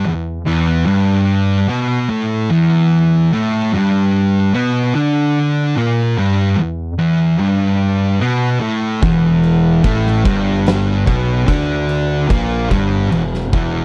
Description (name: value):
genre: stoner and doom metal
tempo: 74 BPM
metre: 4/4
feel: straight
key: E minor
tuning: A4 = 440 Hz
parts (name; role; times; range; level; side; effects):
- thick fuzz guitar; riff; 0.0-13.8 s; E2 to D4; -21 LUFS; equal; distortion
- thick fuzz guitar; riff; 0.0-13.8 s; E2 to D4; -18 LUFS; equal; distortion
- fuzz fingered electric bass; bass; 9.0-13.8 s; E1 to D2; -22 LUFS; equal; overdrive
- oversized low-tuned drum kit; drums; 9.0-13.7 s; crash cymbal, kick drum, snare drum; -22 LUFS; equal; none
room: little or no reverb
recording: dry, close 1970s-style studio recording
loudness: -15 LUFS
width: mono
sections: 0.0-13.8 A section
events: none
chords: 0.0 Em